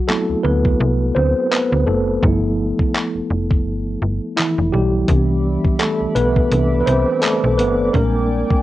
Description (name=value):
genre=contemporary R&B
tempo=84 BPM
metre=4/4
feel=swing 58% on 16ths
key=C major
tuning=A4 = 435 Hz
part: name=mellow tine electric piano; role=accompaniment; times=0.0-8.6 s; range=E3 to C5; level=-18 LUFS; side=equal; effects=medium stereo tremolo, cassette tape
part: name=dusty soul sampler-style drum kit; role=drums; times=0.1-8.6 s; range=handclaps, hi-hat, kick drum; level=-18 LUFS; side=equal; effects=cassette tape
part: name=slap-like FM bass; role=bass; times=0.3-8.4 s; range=F1 to D2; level=-19 LUFS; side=equal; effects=none
part: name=chorused pulse-width pad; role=sustained chords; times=5.1-8.6 s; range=D5 to D6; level=-28 LUFS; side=equal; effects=cassette tape
room=light reverb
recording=home recording on cassette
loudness=-15 LUFS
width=side -15 dB against mid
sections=0.0-8.6 A section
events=break 0.0-5.1; tine electric piano solo 0.0-8.6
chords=0.0 D13; 2.2 G13; 5.1 Cmaj9; 7.9 Bb13